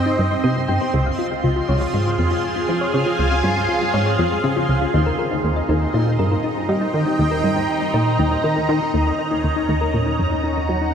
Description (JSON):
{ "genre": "ambient, sequencer-driven space music", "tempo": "120 BPM", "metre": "4/4", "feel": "straight", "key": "unclear", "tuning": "A4 = 440 Hz", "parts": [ { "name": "lush unison pad", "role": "sustained chords", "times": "0.0-10.9 s", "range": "C4 to Bb5", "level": "-22 LUFS", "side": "right 1 dB", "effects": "chorus, phaser" }, { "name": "thumb-piano-like synth pluck", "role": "arpeggios", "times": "0.0-10.9 s", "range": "Eb4 to Eb6", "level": "-25 LUFS", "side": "left 3 dB", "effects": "chorus, auto-pan, ping-pong delay" }, { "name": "plucky analog bass", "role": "riff", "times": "0.0-10.9 s", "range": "Db2 to G3", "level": "-20 LUFS", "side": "equal", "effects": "wide subtle chorus, ping-pong delay" }, { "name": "bubbling stepped-filter texture", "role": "texture", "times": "0.0-10.9 s", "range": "C4 to C6", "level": "-30 LUFS", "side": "right 2 dB", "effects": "chorus, built-in reverb" }, { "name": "warm sub bass", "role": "bass", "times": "8.9-10.9 s", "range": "Eb2", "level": "-27 LUFS", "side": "right 1 dB", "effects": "none" } ], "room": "wet cathedral reverb, RT60 5.4 s", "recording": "in a vast, echoing space", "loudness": "-17 LUFS", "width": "side -7 dB against mid", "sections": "0.0-8.9 A section; 8.9-10.9 B section", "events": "filter sweep on analog synth bass 0.0-8.9", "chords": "0.0 Cm; 0.9 Db; 4.9 Eb; 8.9 Ebm" }